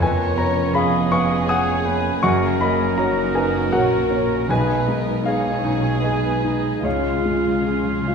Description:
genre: classical.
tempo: 79 BPM.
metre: 3/4.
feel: uneven beats, rubato.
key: F# major.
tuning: A4 = 439 Hz.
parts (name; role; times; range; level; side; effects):
warm chamber violin section; melody; 0.0-8.1 s; G#4 to C#5; -32 LUFS; left 3 dB; none.
warm concert grand piano; melody; 0.0-8.1 s; B1 to D#6; -21 LUFS; left 1 dB; none.
warm chamber violin section; second line; 0.0-8.1 s; E#4 to A#4; -28 LUFS; right 1 dB; none.
warm oboe; second line; 0.0-8.1 s; G#4 to E#5; -29 LUFS; right 2 dB; none.
dark chamber viola section; accompaniment; 0.0-8.1 s; A#3 to F#4; -29 LUFS; right 3 dB; none.
mellow French horn section; sustained chords; 0.0-8.1 s; G#3 to E#4; -28 LUFS; equal; none.
dark chamber cello section; bass; 0.0-8.1 s; E#2 to C#3; -28 LUFS; right 4 dB; none.
dark chamber double bass section; bass; 0.0-8.1 s; E#1 to C#2; -27 LUFS; right 2 dB; none.
timpani; percussion; 6.9-8.1 s; C#3; -31 LUFS; left 3 dB; none.
room: wet recital hall reverb, RT60 1.5 s.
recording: heard from further back in the room.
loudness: -17 LUFS.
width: side -6 dB against mid.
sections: 0.0-8.1 A section.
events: timpani fill 6.8-8.1.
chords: 0.0 C#7/E#; 2.2 F#; 4.5 G#m/B; 6.8 C#.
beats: | 0.02 0.75 1.50 | 2.23 2.98 3.74 | 4.50 5.26 6.04 | 6.85 7.68.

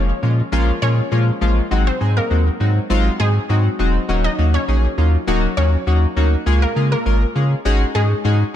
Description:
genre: dance-pop.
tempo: 101 BPM.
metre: 4/4.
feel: straight.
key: unclear.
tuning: A4 = 439 Hz.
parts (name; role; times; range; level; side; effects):
wide unison pluck; melody; 0.0-8.1 s; Ab3 to Eb5; -25 LUFS; equal; ping-pong delay.
chorused retro synth keys; accompaniment; 0.0-8.4 s; F3 to Bb4; -21 LUFS; left 2 dB; none.
warm sub bass; bass; 0.0-8.4 s; Eb1 to Db3; -16 LUFS; equal; none.
room: little or no reverb.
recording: dark, warm production.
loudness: -15 LUFS.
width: side -11 dB against mid.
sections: 0.0-8.6 A section.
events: none.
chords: 0.0 Bbm7; 1.7 Ab7; 4.1 Ebm7; 6.5 Db6; 7.7 Ab7sus4.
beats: 0.52 1.12 | 1.71 2.31 2.90 3.49 | 4.09 4.68 5.28 5.87 | 6.46 7.06 7.65 8.25.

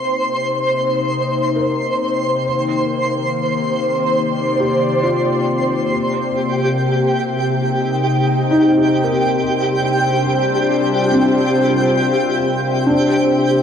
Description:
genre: ambient.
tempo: 69 BPM.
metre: 4/4.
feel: straight.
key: C minor.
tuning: A4 = 441 Hz.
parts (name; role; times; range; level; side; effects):
warm analog pad; sustained chords; 0.0-13.6 s; C3 to D5; -20 LUFS; left 4 dB; wide subtle chorus, cassette tape.
organ-like drone; drone; 0.0-13.6 s; C3 to C4; -23 LUFS; equal; ensemble chorus, built-in reverb, cassette tape.
twinkling granular texture; texture; 0.0-13.6 s; G4 to C6; -19 LUFS; right 1 dB; built-in reverb, cassette tape.
felt-muted upright piano; arpeggios; 1.6-13.6 s; C4 to Bb4; -21 LUFS; right 1 dB; cassette tape, analog delay.
room: wet booth ambience, RT60 0.2 s.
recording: home recording on cassette.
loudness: -15 LUFS.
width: side -8 dB against mid.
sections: 0.0-13.6 A section.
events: fade-in on analog synth pad 0.0-13.6; fade-in on felt piano 0.0-13.6; fade-in on synth drone 0.0-13.6.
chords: 0.0 Cm7.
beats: 0.69 1.56 | 2.43 3.30 4.17 5.04 | 5.91 6.78 7.65 8.52 | 9.38 10.26 11.12 11.99 | 12.86.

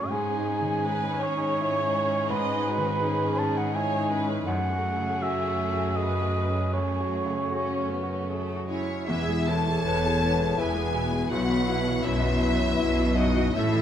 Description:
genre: cinematic, emotional film score for orchestra.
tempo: 75-84 BPM.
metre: 3/4.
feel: rubato.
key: E major from 9.1 s.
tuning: A4 = 439 Hz.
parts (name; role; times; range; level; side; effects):
dark cor anglais; second line; 0.0-8.6 s; B4 to A5; -29 LUFS; right 2 dB; none.
rich studio violin section; second line; 0.0-13.8 s; G#3 to A5; -34 LUFS; left 2 dB; none.
bright concert grand piano; accompaniment; 0.0-13.8 s; B1 to B4; -31 LUFS; left 1 dB; none.
rich studio viola section; accompaniment; 0.0-13.8 s; E3 to D#5; -34 LUFS; right 1 dB; none.
rich studio cello section; bass; 0.0-13.8 s; E2 to B2; -30 LUFS; right 1 dB; none.
rich studio violin section; melody; 8.7-13.8 s; C#5 to A5; -32 LUFS; left 3 dB; none.
mellow clarinet; second line; 8.7-13.8 s; C#4 to A4; -33 LUFS; left 3 dB; none.
small flute group; second line; 8.7-13.8 s; E4 to C#5; -33 LUFS; right 1 dB; none.
mellow French horn section; sustained chords; 9.1-13.8 s; E3 to C#4; -32 LUFS; left 4 dB; none.
rich studio double bass section; bass; 9.1-13.8 s; E1 to B1; -30 LUFS; right 1 dB; none.
room: moderate scoring stage reverb, RT60 1.9 s.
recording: none.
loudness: -24 LUFS.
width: side -9 dB against mid.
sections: 0.0-9.1 A section; 9.1-13.8 B section.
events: none.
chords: 0.1 C#sus2/G#; 4.5 F#madd9; 9.1 E; 11.3 Bsus4.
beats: | 0.10 0.85 1.59 | 2.31 3.03 3.76 | 4.49 5.22 5.97 | 6.74 7.52 8.29 | 9.09 9.86 10.59 | 11.32 12.05 12.79 | 13.55.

